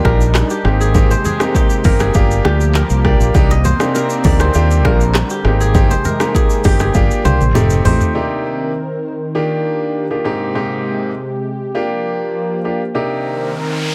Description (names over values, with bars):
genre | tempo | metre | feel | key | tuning
afrobeats | 100 BPM | 4/4 | straight | unclear | A4 = 441 Hz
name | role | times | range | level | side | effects
clear baby grand piano | accompaniment | 0.0-13.5 s | Ab2 to G4 | -21 LUFS | equal | none
warm analog pad | sustained chords | 0.0-13.9 s | C3 to Bb4 | -25 LUFS | equal | chorus
kora | riff | 0.0-9.0 s | G4 to Eb5 | -24 LUFS | equal | digital delay
modern bright fingered electric bass | bass | 0.0-8.0 s | F1 to Eb2 | -17 LUFS | equal | none
afro-pop drum kit | drums | 0.0-8.1 s | handclaps, hi-hat, kick drum, rim click, shaker, toms | -18 LUFS | equal | none
bongos and congas | percussion | 0.1-8.0 s | none | -25 LUFS | equal | none
noise sweep | sound effects | 13.3-13.9 s | none | -28 LUFS | equal | none
room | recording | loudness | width
digital ambience | none | -15 LUFS | mono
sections
0.0-8.1 A section; 8.1-13.9 B section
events
drum fill 6.9-8.1; noise sweep 13.3-13.9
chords
0.0 Ebmaj7; 0.6 Abmaj7; 2.1 Gm7; 3.3 Cm7; 4.5 Ebmaj7; 5.4 Abmaj7; 6.9 Gm7; 7.5 F7; 8.1 Cm7; 9.3 Ebmaj7; 10.2 Abmaj7; 11.7 Gm7; 12.9 Cm7